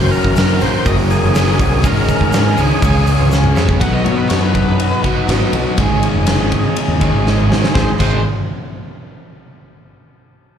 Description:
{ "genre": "classic rock", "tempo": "122 BPM", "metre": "4/4", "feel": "straight", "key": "unclear", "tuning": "A4 = 440 Hz", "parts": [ { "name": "overdriven tonewheel organ", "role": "melody", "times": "0.0-3.3 s", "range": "Ab4 to Eb5", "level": "-21 LUFS", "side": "left 1 dB", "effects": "slow rotary speaker, slapback echo" }, { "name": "picked twelve-string acoustic guitar", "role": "accompaniment", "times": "0.0-8.2 s", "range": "Ab2 to B4", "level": "-24 LUFS", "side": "right 2 dB", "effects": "slapback echo" }, { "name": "tonewheel organ", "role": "sustained chords", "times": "0.0-8.1 s", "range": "Db4 to D#5", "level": "-27 LUFS", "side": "equal", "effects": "slow rotary speaker, overdrive" }, { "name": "overdriven electric guitar", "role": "riff", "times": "0.0-8.2 s", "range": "Ab2 to Bb4", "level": "-21 LUFS", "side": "left 11 dB", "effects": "slapback echo" }, { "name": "overdriven semi-hollow guitar", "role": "riff", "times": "0.0-8.2 s", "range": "Gb2 to Db4", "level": "-21 LUFS", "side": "right 10 dB", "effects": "slapback echo" }, { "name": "growling fingered electric bass", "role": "bass", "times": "0.0-8.2 s", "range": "F1 to B2", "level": "-17 LUFS", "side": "equal", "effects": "overdrive" }, { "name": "huge arena drum kit", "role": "drums", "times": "0.1-8.1 s", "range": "crash cymbal, hi-hat, kick drum, ride cymbal, snare drum, toms", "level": "-17 LUFS", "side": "equal", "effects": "none" }, { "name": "tube shaker", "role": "percussion", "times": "0.4-3.7 s", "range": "none", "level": "-37 LUFS", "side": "left 4 dB", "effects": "none" }, { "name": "octave-fuzz lead guitar", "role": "second line", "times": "3.8-8.2 s", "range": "B4 to F#5", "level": "-25 LUFS", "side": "left 2 dB", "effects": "distortion, slapback echo" } ], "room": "studio ambience", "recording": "live gig heard through the venue's PA, club ambience", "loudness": "-12 LUFS", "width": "side -8 dB against mid", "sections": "0.0-3.8 A section; 3.8-7.8 B section; 7.8-9.7 C section", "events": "drum fill 3.3-3.8, 7.3-7.8", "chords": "0.0 Gb; 1.8 Absus4; 2.8 Db; 3.8 B; 5.8 Absus4; 7.8 Ab" }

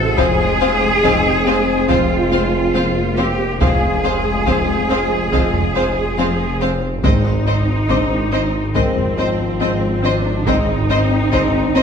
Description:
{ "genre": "cinematic, hybrid orchestral and electronic film score", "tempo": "70 BPM", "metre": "4/4", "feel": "straight", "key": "unclear", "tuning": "A4 = 440 Hz", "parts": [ { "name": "mellow trombone section", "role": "sustained chords", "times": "0.0-10.8 s", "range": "C3 to C4", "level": "-28 LUFS", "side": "right 2 dB", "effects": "none" }, { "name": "analog pluck", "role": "arpeggios", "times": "0.0-11.8 s", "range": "F3 to D#4", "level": "-26 LUFS", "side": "left 5 dB", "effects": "chorus" }, { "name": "rich symphonic cello section", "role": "bass", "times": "0.0-11.8 s", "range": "B#3 to A4", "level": "-20 LUFS", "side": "right 1 dB", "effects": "none" }, { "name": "rich symphonic double bass section", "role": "bass", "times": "0.0-11.8 s", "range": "F1 to G#1", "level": "-23 LUFS", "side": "right 2 dB", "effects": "none" }, { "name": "swelling detuned saw bass", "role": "bass", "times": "0.0-11.8 s", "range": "F1 to A1", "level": "-25 LUFS", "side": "equal", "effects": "none" }, { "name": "felt-muted upright piano", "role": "texture", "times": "0.0-11.8 s", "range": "D4 to D6", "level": "-29 LUFS", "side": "left 1 dB", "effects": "none" }, { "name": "rich studio violin section", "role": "melody", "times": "0.2-11.8 s", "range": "D#5 to F5", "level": "-27 LUFS", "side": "left 3 dB", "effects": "none" }, { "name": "warm symphonic violin section", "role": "second line", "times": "0.2-11.8 s", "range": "C5", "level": "-24 LUFS", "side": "left 3 dB", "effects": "none" }, { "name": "rich symphonic viola section", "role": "accompaniment", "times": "0.2-11.8 s", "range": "C4", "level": "-25 LUFS", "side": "right 2 dB", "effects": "none" }, { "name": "dark French horn section", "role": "sustained chords", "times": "0.2-11.8 s", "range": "D#3 to B#3", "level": "-24 LUFS", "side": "left 4 dB", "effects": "none" }, { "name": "taiko ensemble", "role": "drums", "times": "0.2-11.8 s", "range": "none", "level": "-22 LUFS", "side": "equal", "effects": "none" } ], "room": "wet recital hall reverb, RT60 1.7 s", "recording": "recorded in a church or concert hall", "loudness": "-14 LUFS", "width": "side -7 dB against mid", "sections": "0.0-11.8 A section", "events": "none", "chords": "0.2 Fm; 7.0 G#" }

